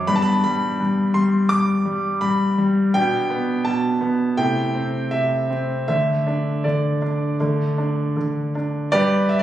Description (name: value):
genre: classical-period piano sonatina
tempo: 78-86 BPM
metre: 4/4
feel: rubato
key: G major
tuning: A4 = 440 Hz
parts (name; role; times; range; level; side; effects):
- clear grand piano; solo; 0.0-9.4 s; G2 to D6; -18 LUFS; equal; none
room: moderate recital hall reverb, RT60 1.4 s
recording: recorded on a phone in the room, studio reverb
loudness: -18 LUFS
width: side -12 dB against mid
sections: 0.0-8.9 A section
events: none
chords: 0.1 G; 2.9 G/B; 4.4 Am7/C; 5.9 D5; 8.9 G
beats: | 0.09 0.80 1.50 2.22 | 2.94 3.66 4.38 5.12 | 5.88 6.64 7.40 8.16 | 8.92